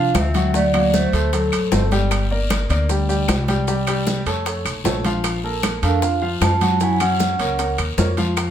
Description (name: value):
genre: Afro-Cuban jazz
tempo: 153 BPM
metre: 4/4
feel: straight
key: unclear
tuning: A4 = 440 Hz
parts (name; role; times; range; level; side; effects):
- vibraphone with soft mallets; melody; 0.0-1.9, 5.8-7.7 s; A4 to A5; -22 LUFS; right 3 dB; none
- clear clarinet; second line; 0.0-1.9, 5.8-7.7 s; F#3 to F4; -26 LUFS; right 4 dB; none
- warm concert grand piano; accompaniment; 0.0-8.5 s; F3 to G5; -22 LUFS; left 1 dB; none
- upright bass; bass; 0.0-8.5 s; G1 to Gb2; -22 LUFS; left 1 dB; none
- bongos; percussion; 0.1-8.5 s; none; -28 LUFS; left 6 dB; none
- congas; percussion; 0.1-8.5 s; none; -26 LUFS; equal; none
- guiro; percussion; 0.1-8.5 s; none; -33 LUFS; left 5 dB; none
- maracas; percussion; 0.1-8.5 s; none; -34 LUFS; right 7 dB; none
- timbales; percussion; 0.1-8.5 s; none; -28 LUFS; right 3 dB; none
- claves; percussion; 0.2-8.5 s; none; -31 LUFS; left 6 dB; none
room: wet studio reverb, RT60 0.7 s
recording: heard from further back in the room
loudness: -17 LUFS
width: side -10 dB against mid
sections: 0.0-8.5 A section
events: none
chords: 0.0 F5; 0.5 D7; 2.1 Gm; 3.7 C5; 4.5 Faug; 5.2 Bbmaj7; 6.8 Gb